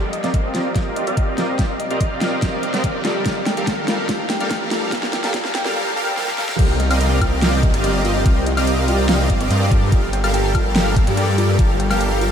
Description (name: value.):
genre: future bass.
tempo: 144 BPM.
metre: 4/4.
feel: half-time.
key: unclear.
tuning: A4 = 441 Hz.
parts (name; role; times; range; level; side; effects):
thumb-piano-like synth pluck; arpeggios; 0.0-12.3 s; F4 to G5; -29 LUFS; right 1 dB; chorus, sidechain pumping, analog delay.
supersaw chords; riff; 0.0-12.3 s; G3 to F5; -21 LUFS; equal; analog chorus, sidechain pumping, low-pass filter, analog delay.
riser and swell; sound effects; 0.0-6.6 s; none; -37 LUFS; equal; none.
dubstep drum kit; drums; 0.1-12.3 s; crash cymbal, hi-hat, snare drum, woodblock; -24 LUFS; equal; overdrive, small room reverb.
electronic kick drum; drums; 0.3-11.7 s; none; -18 LUFS; equal; overdrive, small room reverb.
wide detuned saw bass; bass; 6.6-12.3 s; G1 to G2; -19 LUFS; equal; chorus, tube saturation, sidechain pumping.
room: moderate huge ambient reverb, RT60 8.5 s.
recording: dreamy mix soaked in reverb, high-pass filter.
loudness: -16 LUFS.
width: side -8 dB against mid.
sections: 0.0-6.6 A section; 6.6-12.3 B section.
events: build-up 0.0-6.6; drum fill 0.0-5.8, 6.2-6.6; filter sweep on supersaw synth 0.0-6.6; filter sweep on synth arpeggio sound 0.0-6.6; filter sweep 0.0-6.6; swell 5.8-6.6; drop 6.6-12.3.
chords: 0.0 Cm11; 3.0 Gm7; 6.6 Cm11; 9.7 Gm7.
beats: 0.34 0.76 1.17 | 1.59 2.01 2.42 2.84 | 3.26 3.67 4.09 4.51 | 4.92 5.34 5.76 6.17 | 6.59 7.01 7.42 7.84 | 8.26 8.67 9.09 9.51 | 9.92 10.34 10.76 11.17 | 11.59 12.01.